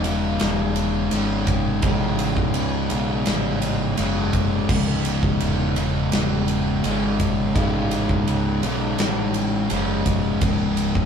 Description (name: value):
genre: stoner and doom metal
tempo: 84 BPM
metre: 4/4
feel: straight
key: C# minor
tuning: A4 = 435 Hz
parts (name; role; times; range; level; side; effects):
- fuzz guitar; riff; 0.0-11.1 s; C#2 to C#3; -22 LUFS; left 1 dB; distortion
- growling picked electric bass; bass; 0.0-11.1 s; C#1 to C#2; -27 LUFS; right 1 dB; overdrive
- big rock drum kit; drums; 0.0-11.1 s; crash cymbal, kick drum, ride cymbal, snare drum; -25 LUFS; equal; none
room: light reverb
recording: band playing live in one room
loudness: -19 LUFS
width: side -7 dB against mid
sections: 0.0-11.1 A section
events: none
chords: 0.0 C#m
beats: 0.40 1.11 | 1.83 2.54 3.26 3.97 | 4.69 5.40 6.12 6.84 | 7.55 8.27 8.99 9.70 | 10.42